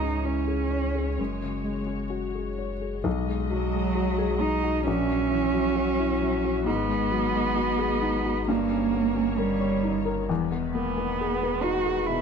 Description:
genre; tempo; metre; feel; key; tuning
neoclassical piano and strings; 66 BPM; 4/4; rubato; unclear; A4 = 440 Hz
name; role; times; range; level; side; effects
muted cello; second line; 0.0-12.2 s; F#3 to F#4; -26 LUFS; right 6 dB; none
felt-muted upright piano; accompaniment; 0.0-12.2 s; A#1 to C#5; -28 LUFS; left 7 dB; none
muted symphonic string section; sustained chords; 0.0-12.2 s; D#3 to E5; -36 LUFS; left 1 dB; none
punchy sub bass; bass; 0.0-12.2 s; E1 to C#2; -32 LUFS; equal; none
room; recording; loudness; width
light reverb; dark, warm production; -24 LUFS; side -6 dB against mid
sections
0.0-3.1 A section; 3.1-12.2 B section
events
none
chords
0.0 C#madd9; 1.2 F#sus2; 3.1 B6; 4.9 F#7/A#; 6.7 G#m7; 8.5 D#7/G; 10.3 Emaj7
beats
0.27 1.19 2.12 | 3.06 3.96 4.87 5.78 | 6.68 7.59 8.49 9.39 | 10.29 11.19 12.08

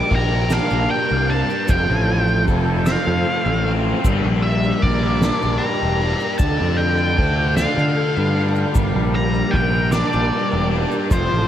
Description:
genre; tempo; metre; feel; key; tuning
psychedelic rock; 51 BPM (dotted quarters); 6/8; straight; G minor; A4 = 440 Hz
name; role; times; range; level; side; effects
octave-fuzz lead guitar; melody; 0.0-11.5 s; C5 to D6; -23 LUFS; equal; wah, distortion, tape echo
tonewheel organ; sustained chords; 0.0-11.5 s; A3 to Bb4; -28 LUFS; right 3 dB; slow rotary speaker, chorus vibrato
fuzz guitar; riff; 0.0-11.5 s; D3 to Bb4; -22 LUFS; left 1 dB; distortion, phaser, tape echo
fuzz picked electric bass; bass; 0.1-11.5 s; E1 to D3; -21 LUFS; equal; overdrive
soft-mallet drum kit; drums; 0.1-11.3 s; crash cymbal, kick drum, ride cymbal, snare drum; -24 LUFS; equal; none
tube shaker; percussion; 0.5-11.3 s; none; -41 LUFS; left 4 dB; tape echo
room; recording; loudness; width
light reverb, small room ambience; echo-heavy mix; -16 LUFS; side -10 dB against mid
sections
0.0-11.5 A section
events
none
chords
0.0 Gm; 1.7 F; 4.0 Gm; 6.4 Dm; 8.8 Gm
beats
0.51 | 1.69 2.87 | 4.05 5.22 | 6.40 7.58 | 8.75 9.93 | 11.11

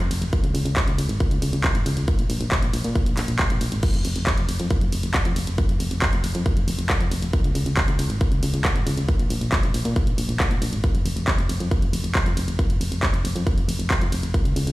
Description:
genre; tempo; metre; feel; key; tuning
uplifting trance; 137 BPM; 4/4; straight; unclear; A4 = 440 Hz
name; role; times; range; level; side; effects
solid FM bass; bass; 0.0-14.7 s; F1 to Bb2; -24 LUFS; equal; sidechain pumping
punchy analog drum machine; drums; 0.0-14.7 s; crash cymbal, handclaps, hi-hat, ride cymbal; -28 LUFS; equal; sidechain pumping on hats, sidechain pumping on cymbals
electronic kick drum; drums; 0.3-14.4 s; none; -22 LUFS; equal; none
room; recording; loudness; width
little or no reverb; played on a big sound system in a bare room, stone room reverb; -20 LUFS; side -18 dB against mid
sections
0.0-14.7 A section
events
none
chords
none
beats
| 0.33 0.77 1.20 1.64 | 2.08 2.52 2.96 3.39 | 3.83 4.27 4.71 5.14 | 5.58 6.02 6.46 6.90 | 7.33 7.77 8.21 8.65 | 9.09 9.53 9.96 10.40 | 10.84 11.28 11.71 12.15 | 12.59 13.03 13.47 13.90 | 14.34

